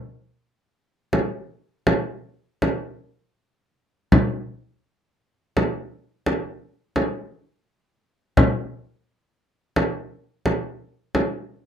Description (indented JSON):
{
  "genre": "caucasian folk",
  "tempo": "free time",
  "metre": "none",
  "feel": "none",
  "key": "none",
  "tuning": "none",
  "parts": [
    { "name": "frame drum", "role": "percussion", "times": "1.1-11.5 s", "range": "none", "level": "-19 LUFS", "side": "equal", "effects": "none" }
  ],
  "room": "light reverb",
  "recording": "close, detailed microphones",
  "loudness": "-22 LUFS",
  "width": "side -8 dB against mid",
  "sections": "0.0-11.7 A section",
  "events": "none",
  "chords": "none"
}